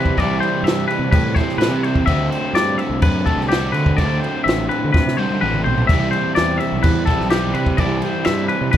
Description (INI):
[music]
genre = math rock and midwest emo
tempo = 126 BPM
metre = 4/4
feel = straight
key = unclear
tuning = A4 = 440 Hz
[part]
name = twangy electric guitar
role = arpeggios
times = 0.0-8.8 s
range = G4 to E5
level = -22 LUFS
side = left 5 dB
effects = none
[part]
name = crunchy overdriven guitar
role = riff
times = 0.0-8.8 s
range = C3 to F#4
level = -22 LUFS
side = right 2 dB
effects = none
[part]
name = fuzz fingered electric bass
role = bass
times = 0.0-8.8 s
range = A1 to D3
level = -22 LUFS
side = right 1 dB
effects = overdrive
[part]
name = compact cocktail drum kit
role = drums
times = 0.1-8.8 s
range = crash cymbal, kick drum, snare drum, toms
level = -20 LUFS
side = equal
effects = none
[sound]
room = light reverb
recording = none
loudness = -15 LUFS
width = side -10 dB against mid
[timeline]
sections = 0.0-8.8 A section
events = drum fill 4.9-5.9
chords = 0.0 Cmaj7; 2.1 D9sus4; 5.9 Cmaj7